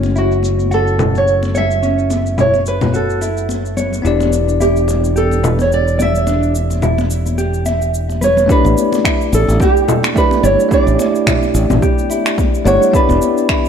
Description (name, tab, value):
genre	sunset chillout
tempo	108 BPM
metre	4/4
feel	swing 56% on 16ths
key	unclear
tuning	A4 = 440 Hz
part	bell-like tine electric piano	accompaniment	0.0-13.7 s	A3 to F#5	-20 LUFS	moving between left 9 dB and right 8 dB	auto-pan, digital delay
part	modern bright fingered electric bass	bass	0.0-13.2 s	E1 to A1	-17 LUFS	equal	none
part	electronic cabasa, congas and finger snaps	drums	0.0-13.7 s	none	-20 LUFS	left 2 dB	low-pass filter on perc, low-pass filter on snare, low-pass filter on room
part	congas	percussion	0.0-13.6 s	none	-24 LUFS	left 4 dB	none
part	nylon-string guitar	melody	0.2-13.7 s	F#4 to E5	-17 LUFS	right 2 dB	tape echo
part	mellow electric guitar	arpeggios	0.2-13.7 s	C#4 to E5	-22 LUFS	right 2 dB	digital delay
part	electronic kick drum	drums	8.5-13.6 s	none	-16 LUFS	equal	none
room	light reverb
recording	faint mains hum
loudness	-12 LUFS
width	side -7 dB against mid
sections	0.0-8.5 A section; 8.5-13.7 B section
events	filter sweep on drum 0.0-8.5; filter sweep on clean electric guitar 0.0-8.5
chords	0.0 F#m7; 4.0 Em7; 8.5 A7sus4; 12.9 Em7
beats	0.16 0.72 1.27 | 1.83 2.38 2.94 3.50 | 4.05 4.61 5.16 5.72 | 6.27 6.83 7.38 7.94 | 8.49 9.05 9.61 10.16 | 10.72 11.27 11.83 12.38 | 12.94 13.49